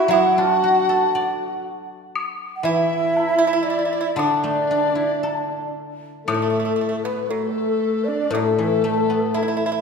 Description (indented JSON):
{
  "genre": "chinese traditional, Chinese chamber ensemble",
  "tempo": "59 BPM",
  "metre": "4/4",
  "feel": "rubato",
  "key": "D gong mode",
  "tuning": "A4 = 441 Hz",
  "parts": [
    { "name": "mellow hollow xiao", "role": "melody", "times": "0.0-9.8 s", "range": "A4 to F#5", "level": "-23 LUFS", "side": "right 1 dB", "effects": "none" },
    { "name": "dark horsehead fiddle", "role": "second line", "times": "0.0-9.8 s", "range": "A3 to F#4", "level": "-25 LUFS", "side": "right 2 dB", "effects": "none" },
    { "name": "mellow hollow large dizi", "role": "second line", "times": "0.0-9.8 s", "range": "A4 to F#5", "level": "-25 LUFS", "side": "left 3 dB", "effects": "none" },
    { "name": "pipa", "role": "second line", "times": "0.0-9.8 s", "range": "A3 to F#4", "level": "-25 LUFS", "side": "right 5 dB", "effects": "none" },
    { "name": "guzheng", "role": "accompaniment", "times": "0.1-9.8 s", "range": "A2 to D5", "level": "-25 LUFS", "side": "left 4 dB", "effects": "none" },
    { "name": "woodblock", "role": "percussion", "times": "0.1-9.6 s", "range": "none", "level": "-31 LUFS", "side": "left 4 dB", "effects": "none" }
  ],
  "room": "wet concert hall reverb, RT60 2.4 s",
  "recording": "minimal, uncompressed stereo recording",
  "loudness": "-18 LUFS",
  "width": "side -5 dB against mid",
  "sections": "0.0-6.3 A section; 6.3-9.8 B section",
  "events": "none",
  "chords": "none",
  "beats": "0.11 1.12 | 2.14 3.15 4.17 5.23 | 6.28 7.31 8.34 9.36"
}